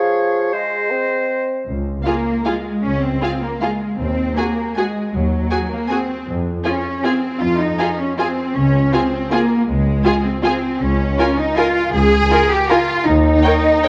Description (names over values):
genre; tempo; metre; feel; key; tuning
classical, orchestral ballroom waltz; 158 BPM; 3/4; uneven beats, rubato; Db major; A4 = 439 Hz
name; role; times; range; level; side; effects
bright oboe; second line; 0.0-1.5 s; C5 to Db5; -25 LUFS; equal; none
dark clarinet; second line; 0.0-1.3 s; Ab4; -25 LUFS; equal; none
small flute group; second line; 0.0-1.5 s; Eb5 to F5; -28 LUFS; equal; none
mellow bassoon; accompaniment; 0.0-1.7 s; F3 to C4; -24 LUFS; equal; none
rich symphonic double bass section; bass; 1.7-13.4 s; Db2 to F2; -23 LUFS; equal; none
warm symphonic violin section; melody; 2.0-13.9 s; F5 to Ab5; -29 LUFS; equal; none
rich symphonic cello section; bass; 2.0-13.9 s; Gb3 to Ab4; -20 LUFS; equal; none
rich symphonic violin section; second line; 2.1-13.9 s; Ab4 to Db5; -28 LUFS; equal; none
rich symphonic viola section; accompaniment; 2.1-13.9 s; F4 to Bb4; -25 LUFS; equal; none
room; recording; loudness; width
wet recital hall reverb, RT60 1.8 s; worn, warbling old tape, cassette tape, warbly pitch drift; -18 LUFS; mono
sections
0.0-1.7 A section; 1.7-13.9 B section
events
none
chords
0.0 Db; 0.5 Ab; 1.7 Db; 4.0 Ab7/Eb; 6.3 Db/F; 8.6 Db; 10.8 Bbm7/Db (rootless); 13.1 N.C.